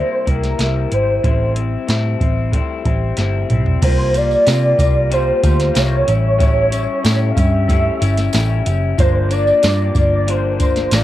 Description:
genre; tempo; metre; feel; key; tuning
indie pop, bedroom pop; 93 BPM; 4/4; straight; unclear; A4 = 439 Hz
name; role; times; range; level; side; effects
warm velvety synth lead; melody; 0.0-11.0 s; Bb4 to F5; -18 LUFS; equal; ensemble chorus, cassette tape, plate reverb
electric guitar through a small old amp; accompaniment; 0.0-11.0 s; G2 to F4; -22 LUFS; left 7 dB; analog chorus, warbly pitch drift, cassette tape
vintage muted picked electric bass; bass; 0.3-11.0 s; F#1 to C3; -17 LUFS; right 1 dB; none
soft vintage rhythm box; drums; 0.3-11.0 s; crash cymbal, hi-hat, kick drum, snare drum, toms; -18 LUFS; right 1 dB; cassette tape
tambourine; percussion; 3.8-11.0 s; none; -35 LUFS; right 13 dB; none
room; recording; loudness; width
moderate booth ambience, RT60 0.2 s; home recording on cassette; -13 LUFS; side -14 dB against mid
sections
0.0-3.8 A section; 3.8-11.0 B section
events
drum fill 3.2-3.8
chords
0.0 C7; 1.2 Am7; 3.8 C7sus4; 6.1 A7; 9.0 Gm7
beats
0.59 | 1.24 1.89 2.53 3.18 | 3.82 4.47 5.11 5.76 | 6.41 7.05 7.70 8.34 | 8.99 9.63 10.28 10.92

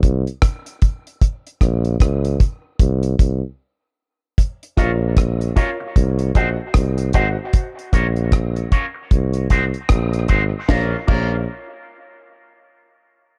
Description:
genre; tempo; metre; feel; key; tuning
dub reggae; 76 BPM; 4/4; swing 60% on 16ths; Bb minor; A4 = 440 Hz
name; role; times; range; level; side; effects
warm tuba; bass; 0.0-11.5 s; Ab1 to Db2; -22 LUFS; equal; none
deep reggae drum kit; drums; 0.0-11.3 s; crash cymbal, hi-hat, kick drum, rim click, snare drum; -17 LUFS; equal; none
electric guitar with an envelope filter; accompaniment; 4.8-11.4 s; Bb3 to Db5; -28 LUFS; equal; dub echo
dark upright piano; stabs; 4.8-11.4 s; F4 to Gb5; -30 LUFS; equal; dub echo
room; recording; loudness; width
small room ambience; dark, warm production; -19 LUFS; mono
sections
0.0-4.4 A section; 4.4-10.7 B section; 10.7-13.4 C section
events
break 0.0-4.4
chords
0.0 N.C.; 1.2 Bbm; 2.8 N.C.; 4.4 Bbm; 6.0 Cdim; 7.5 Bbm; 9.1 Cdim; 10.7 Bbm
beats
0.42 | 1.21 2.00 2.79 3.58 | 4.37 5.16 5.95 6.74 | 7.53 8.32 9.11 9.90 | 10.69

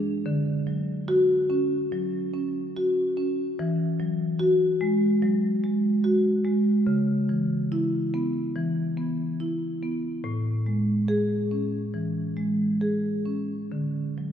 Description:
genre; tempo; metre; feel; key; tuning
classical, contemporary piece for solo marimba; 65-75 BPM; 4/4; rubato; E major from 3.6 s; A4 = 440 Hz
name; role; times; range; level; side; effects
marimba with soft mallets; solo; 0.0-14.3 s; A2 to G#4; -23 LUFS; equal; none
room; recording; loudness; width
wet church reverb, RT60 3.1 s; minimal, uncompressed stereo recording; -23 LUFS; side -9 dB against mid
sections
0.0-14.3 A section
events
none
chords
0.3 Dmaj7; 3.6 Eadd9; 6.9 C#m7; 10.2 Amaj7; 13.7 D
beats
| 0.26 1.09 1.92 2.77 | 3.60 4.40 5.22 6.04 | 6.87 7.72 8.56 9.40 | 10.23 11.08 11.95 12.82 | 13.72

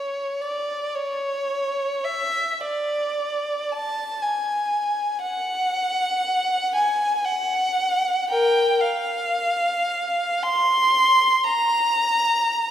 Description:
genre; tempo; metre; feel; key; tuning
classical, free, expressive piece for unaccompanied violin; 58 BPM; 3/4; uneven beats, rubato; F# minor; A4 = 442 Hz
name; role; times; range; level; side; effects
rich violin; solo; 0.0-12.7 s; Bb4 to C6; -20 LUFS; equal; none
room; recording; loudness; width
wet scoring stage reverb, RT60 1.8 s; heard from further back in the room; -20 LUFS; side -10 dB against mid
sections
0.0-12.7 A section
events
none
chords
none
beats
0.97 | 2.06 3.17 4.21 | 5.21 6.23 7.24 | 8.28 9.29 10.43 | 11.43 12.44

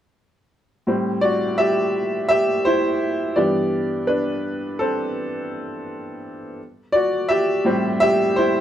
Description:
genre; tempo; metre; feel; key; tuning
R&B; 84 BPM; 4/4; swing 60% on 16ths; A dorian; A4 = 440 Hz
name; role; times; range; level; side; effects
clear upright piano; solo; 0.9-8.6 s; G2 to E5; -18 LUFS; equal; none
room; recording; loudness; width
light reverb; band playing live in one room; -18 LUFS; side -10 dB against mid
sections
0.9-8.6 A section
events
upright piano solo 0.9-8.6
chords
0.9 Am7; 3.4 G69; 6.6 Am7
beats
| 0.86 1.58 2.29 3.01 | 3.72 4.44 5.15 5.87 | 6.58 7.29 8.01

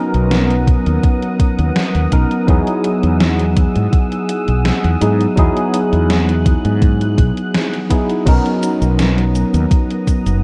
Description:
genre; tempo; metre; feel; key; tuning
vaporwave; 83 BPM; 4/4; straight; B major; A4 = 440 Hz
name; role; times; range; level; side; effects
tine electric piano; accompaniment; 0.0-10.4 s; F#3 to A#4; -20 LUFS; equal; analog chorus, vintage 12-bit sampler grit, tape echo
lush unison pad; sustained chords; 0.0-10.4 s; B3 to F#6; -28 LUFS; equal; chorus, vintage 12-bit sampler grit
mellow fretless electric bass; bass; 0.1-10.4 s; F#1 to G#2; -18 LUFS; equal; none
gated 80s digital drum machine; drums; 0.1-10.4 s; cabasa, crash cymbal, hi-hat, snare drum; -23 LUFS; equal; gated reverb, gated reverb snare, overdrive, small room reverb
electronic kick drum; drums; 0.7-10.2 s; none; -16 LUFS; equal; overdrive, small room reverb
room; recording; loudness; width
digital ambience; dark, warm production; -15 LUFS; mono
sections
0.0-8.3 A section; 8.3-10.4 A section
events
band accent 7.5-7.9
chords
0.0 Bmaj7; 2.5 Emaj9; 8.3 Bmaj7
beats
0.31 1.04 1.76 | 2.48 3.21 3.93 4.65 | 5.37 6.10 6.82 7.54 | 8.27 8.99 9.71

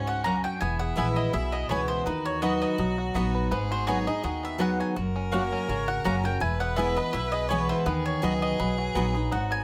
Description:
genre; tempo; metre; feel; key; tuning
bluegrass; 166 BPM; 4/4; straight; B major; A4 = 441 Hz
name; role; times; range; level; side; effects
bluegrass banjo; melody; 0.0-9.6 s; F#3 to B4; -38 LUFS; equal; none
mandolin; melody; 0.0-9.6 s; B4 to A#5; -34 LUFS; equal; none
clear fiddle; second line; 0.0-9.6 s; C#4 to B4; -38 LUFS; equal; none
picked steel-string acoustic guitar; accompaniment; 0.0-9.6 s; E2 to B4; -31 LUFS; equal; none
upright bass; bass; 0.0-9.6 s; E1 to D#2; -34 LUFS; equal; none
mandolin; stabs; 0.2-9.0 s; A#3 to B5; -34 LUFS; equal; none
room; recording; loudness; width
light reverb; close, detailed microphones; -27 LUFS; mono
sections
0.0-9.6 A section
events
none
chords
0.0 F#; 0.6 E; 2.1 B/D#; 3.5 G#m7; 5.0 F#; 6.4 E; 7.9 B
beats
0.25 | 0.61 0.98 1.34 1.70 | 2.07 2.43 2.79 3.15 | 3.52 3.88 4.24 4.60 | 4.97 5.33 5.69 6.05 | 6.42 6.78 7.14 7.50 | 7.86 8.23 8.59 8.95 | 9.31

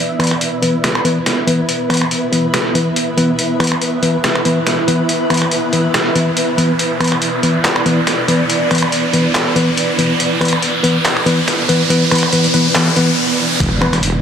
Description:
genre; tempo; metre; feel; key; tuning
deep dubstep; 141 BPM; 4/4; swing 54% on 16ths, half-time; unclear; A4 = 440 Hz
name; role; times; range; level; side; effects
granular cloud pad; sustained chords; 0.0-14.2 s; B3 to E5; -21 LUFS; right 2 dB; built-in reverb
riser and impact; sound effects; 2.3-14.2 s; none; -20 LUFS; right 1 dB; none
flickering grainy texture; texture; 0.0-13.2 s; B4; -26 LUFS; equal; built-in reverb
mellow tine electric piano; stabs; 0.2-13.9 s; E3 to B4; -16 LUFS; left 1 dB; low-pass filter, dub echo
trip hop sampler-style drum kit; drums; 0.2-14.1 s; finger snaps, handclaps, hi-hat, snare drum; -18 LUFS; equal; soft clipping on snare, high-pass filter on snare, high-pass filter on hats, high-pass filter on room
wobble bass; bass; 13.6-14.2 s; E1; -17 LUFS; equal; chorus
electronic kick drum; drums; 13.6-13.7 s; none; -20 LUFS; equal; none
room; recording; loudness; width
moderate huge ambient reverb, RT60 4.0 s; dense, heavily limited modern master, vinyl crackle; -12 LUFS; side -8 dB against mid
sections
0.0-13.6 A section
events
build-up 0.0-13.6; riser 2.3-13.6; stop 13.2-13.6; impact 13.6-14.2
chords
0.0 E5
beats
0.41 0.84 1.26 | 1.69 2.11 2.54 2.96 | 3.39 3.81 4.24 4.67 | 5.09 5.52 5.94 6.37 | 6.79 7.22 7.64 8.07 | 8.50 8.92 9.35 9.77 | 10.20 10.62 11.05 11.47 | 11.90 12.33 12.75 13.18 | 13.60 14.03

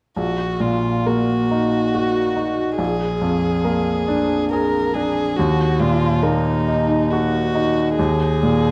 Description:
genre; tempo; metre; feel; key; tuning
classical, slow romantic movement for piano quintet; 69 BPM; 3/4; rubato; Eb minor; A4 = 441 Hz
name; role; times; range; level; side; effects
clear violin; melody; 0.2-8.7 s; Eb4 to Bb4; -25 LUFS; equal; none
bright baby grand piano; accompaniment; 0.2-8.7 s; Bb1 to Ab4; -20 LUFS; equal; none
room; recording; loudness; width
moderate scoring stage reverb, RT60 2.0 s; dark, warm production; -19 LUFS; mono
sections
0.2-8.7 A section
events
none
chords
0.2 Ebm/Bb; 2.8 Bb7; 5.4 Ebm; 8.0 Bb7(no3)/Eb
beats
| 0.17 1.06 1.94 | 2.79 3.65 4.51 | 5.37 6.22 7.11 | 7.98

